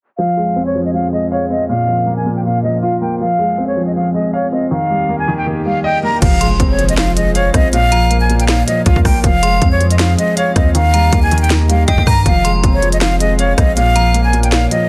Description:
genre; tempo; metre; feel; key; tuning
hip hop, trap; 159 BPM; 4/4; half-time; F minor; A4 = 442 Hz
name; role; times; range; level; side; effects
breathy concert flute; melody; 0.2-14.9 s; Db5 to Bb5; -20 LUFS; equal; tape echo
dark baby grand piano; accompaniment; 0.2-14.9 s; Bb2 to F5; -20 LUFS; equal; none
warbly tape-like pad; sustained chords; 0.5-14.9 s; Eb2 to F5; -28 LUFS; equal; chorus, built-in reverb
long sustained 808-style bass; bass; 6.2-14.7 s; F1 to G2; -17 LUFS; equal; none
trap drum kit; drums; 6.2-14.8 s; crash cymbal, handclaps, hi-hat, kick drum, rim click, snare drum; -18 LUFS; equal; none
impact; sound effects; 6.2-7.7 s; none; -24 LUFS; equal; none
metallic FM bell; second line; 6.4-14.1 s; G5 to C6; -26 LUFS; equal; chorus, tape echo
room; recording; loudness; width
digital ambience; dense, heavily limited modern master, low-pass filter; -14 LUFS; mono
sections
0.2-6.2 A section; 6.2-14.9 B section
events
filter sweep 0.2-6.2; impact 6.2-7.7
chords
0.2 Fm; 1.7 Bbm; 3.2 Fm; 4.7 Eb; 6.2 Fm; 7.7 Bbm; 9.2 Fm; 10.7 Eb; 12.3 Fm; 13.8 Bbm

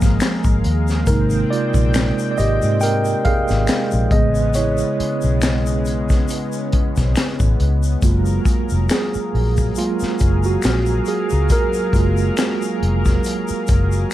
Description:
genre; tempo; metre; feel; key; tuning
R&B, neo-soul; 69 BPM; 4/4; swing 56% on 16ths; unclear; A4 = 440 Hz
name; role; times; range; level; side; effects
mellow tine electric piano; accompaniment; 0.0-14.1 s; B#2 to G5; -21 LUFS; right 3 dB; fast stereo tremolo, plate reverb
lush unison pad; sustained chords; 0.0-14.1 s; F#3 to G5; -26 LUFS; left 2 dB; chorus, plate reverb
vintage muted fingered electric bass; bass; 0.0-14.0 s; E#1 to G#2; -18 LUFS; equal; none
crunchy breakbeat drum kit; drums; 0.0-13.9 s; hi-hat, kick drum, snare drum; -19 LUFS; left 1 dB; none
tube shaker and finger snaps; percussion; 0.0-14.1 s; none; -32 LUFS; left 5 dB; none
room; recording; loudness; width
light reverb; none; -16 LUFS; side -14 dB against mid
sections
0.0-8.0 A section; 8.0-14.1 B section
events
tine electric piano solo 0.0-8.0, 8.0-14.1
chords
0.0 F#maj9; 1.1 G#maj9; 4.1 Amaj9; 8.0 F#maj9

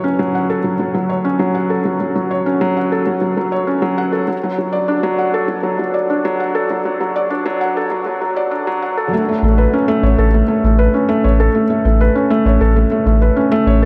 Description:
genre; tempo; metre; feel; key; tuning
piano and strings electronica; 99 BPM; 4/4; straight; A major; A4 = 440 Hz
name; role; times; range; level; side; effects
felt-muted upright piano; riff; 0.0-13.9 s; F#3 to F#5; -17 LUFS; equal; delay
warm sub bass; bass; 9.4-13.9 s; A1; -16 LUFS; equal; none
room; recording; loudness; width
moderate huge ambient reverb, RT60 6.7 s; high-pass filter; -16 LUFS; mono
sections
0.0-9.1 A section; 9.1-13.9 B section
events
build-up 0.0-9.1; filter sweep 0.0-9.1; drop 9.1-13.9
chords
0.0 F#m; 4.3 D; 9.1 Aadd9

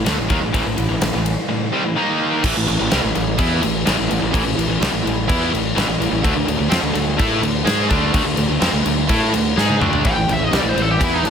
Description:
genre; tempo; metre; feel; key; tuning
hard rock; 126 BPM; 4/4; straight; A minor; A4 = 440 Hz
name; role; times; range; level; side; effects
distorted electric guitar; riff; 0.0-11.3 s; A2 to A4; -22 LUFS; right 10 dB; overdrive
high-gain distorted guitar; riff; 0.0-11.3 s; A2 to A4; -22 LUFS; left 9 dB; distortion
fuzz fingered electric bass; bass; 0.0-11.3 s; A1 to A2; -23 LUFS; equal; overdrive
huge arena drum kit; drums; 0.1-11.3 s; crash cymbal, kick drum, ride cymbal, snare drum, toms; -20 LUFS; left 1 dB; none
high-gain lead guitar; melody; 10.1-11.3 s; D4 to G5; -20 LUFS; equal; distortion, slapback echo
room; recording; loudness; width
light reverb, small room ambience; none; -16 LUFS; side -7 dB against mid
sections
0.0-2.4 A section; 2.4-10.0 B section; 10.0-11.3 C section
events
drum fill 9.6-10.0; lead electric guitar solo 10.0-11.3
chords
0.0 A5; 2.0 D#5; 2.4 Am; 6.2 D5; 10.0 Am

